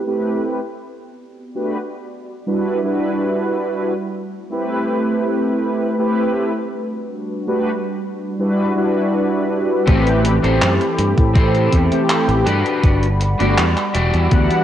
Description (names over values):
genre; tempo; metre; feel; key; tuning
vaporwave; 81 BPM; 4/4; straight; A dorian; A4 = 441 Hz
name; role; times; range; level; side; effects
mellow synth brass; accompaniment; 0.0-14.6 s; E3 to F#5; -19 LUFS; equal; analog chorus, analog delay
warbly tape-like pad; sustained chords; 1.1-14.6 s; G3 to D6; -26 LUFS; right 1 dB; chorus, built-in reverb
electric guitar at the edge of break-up; riff; 9.9-14.6 s; C4 to D5; -21 LUFS; left 1 dB; analog chorus, analog delay
fingered electric bass; bass; 9.9-14.5 s; E1 to A2; -18 LUFS; equal; none
electronic kick drum; drums; 9.9-14.5 s; none; -15 LUFS; equal; overdrive
gated 80s digital drum machine; drums; 9.9-14.6 s; handclaps, hi-hat; -23 LUFS; equal; gated reverb, overdrive
room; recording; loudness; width
moderate concert hall reverb, RT60 2.0 s; worn, warbling old tape, cassette tape, warbly pitch drift; -16 LUFS; side -11 dB against mid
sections
0.0-9.9 A section; 9.9-14.6 B section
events
filter sweep on ambient pad 0.0-9.9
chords
0.0 Am9; 0.6 Gmaj7; 2.1 Em9; 3.9 Am9; 6.5 Gmaj7; 8.0 Em9; 9.9 Am9; 12.5 Gmaj7; 13.9 Em9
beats
0.25 | 0.99 1.73 2.47 3.21 | 3.95 4.69 5.43 6.17 | 6.91 7.65 8.39 9.13 | 9.88 10.62 11.36 12.10 | 12.84 13.58 14.32